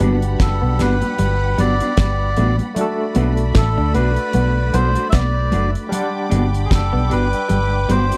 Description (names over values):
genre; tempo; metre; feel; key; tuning
lovers rock reggae; 76 BPM; 4/4; swing 56% on 16ths; unclear; A4 = 440 Hz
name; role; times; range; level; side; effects
warm studio string section; second line; 0.0-8.2 s; F#4 to D6; -32 LUFS; equal; none
barky tine electric piano; accompaniment; 0.0-8.2 s; G3 to F#5; -28 LUFS; equal; overdrive, fast tremolo
electric guitar through a small old amp; riff; 0.0-8.0 s; F#3 to D4; -29 LUFS; equal; none
mellow electric guitar; stabs; 0.0-8.2 s; A3 to F#4; -24 LUFS; equal; none
vintage muted fingered electric bass; bass; 0.0-8.1 s; F#1 to D2; -21 LUFS; equal; none
damped 70s drum kit; drums; 0.0-8.2 s; hi-hat, kick drum, snare drum; -21 LUFS; equal; slapback echo
congas; percussion; 0.0-8.1 s; none; -28 LUFS; equal; slapback echo
melodica; melody; 0.4-8.2 s; G#4 to E5; -26 LUFS; equal; tape echo
room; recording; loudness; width
little or no reverb; dry, close 1970s-style studio recording; -18 LUFS; mono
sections
0.0-8.2 A section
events
none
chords
0.0 Gmaj7; 2.8 Bm7; 5.9 Gmaj7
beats
0.40 1.18 1.97 | 2.76 3.55 4.34 5.13 | 5.92 6.71 7.50